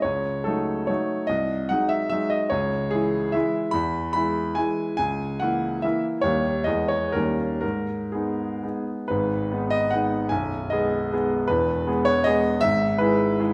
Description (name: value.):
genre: classical, romantic triple-time dance for piano with dotted rhythms.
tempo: 114-169 BPM.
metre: 3/4.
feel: rubato.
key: C# minor, G# minor from 3.7 s.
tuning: A4 = 440 Hz.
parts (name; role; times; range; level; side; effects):
clear grand piano; solo; 0.0-13.5 s; B0 to B5; -24 LUFS; equal; none.
room: wet recital hall reverb, RT60 1.4 s.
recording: none.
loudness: -24 LUFS.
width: mono.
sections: 0.0-9.1 A section; 9.1-13.5 B section.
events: none.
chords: 0.0 D#m7b5/C#; 1.3 G#7/B#; 2.5 C#m; 3.7 E; 5.0 A#m7b5/C#; 6.2 D#7; 6.7 E; 7.2 D#7; 7.6 G#m; 10.3 G#m/B; 11.5 E; 12.6 E/G#.